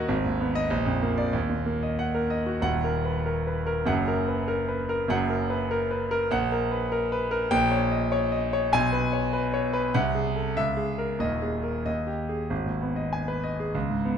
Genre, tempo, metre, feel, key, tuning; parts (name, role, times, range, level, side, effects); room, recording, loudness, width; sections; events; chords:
classical, virtuoso piano study; 97 BPM; 2/4; rubato; G# minor from 7.5 s; A4 = 440 Hz
clear concert grand piano; solo; 0.0-14.2 s; Eb1 to G#5; -24 LUFS; equal
wet recital hall reverb, RT60 1.4 s; dark, warm production; -24 LUFS; side -8 dB against mid
0.0-2.6 A section; 2.6-12.5 B section; 12.5-14.2 A section
0.1 Abm; 0.7 Bb; 1.4 Ebm; 3.9 Gbadd11; 6.3 Gb/Bb; 7.5 D#7/A#; 8.7 G#m/B; 9.9 G#7/B#; 10.6 C#m; 11.2 G#5/D#; 11.9 D#; 12.5 G#m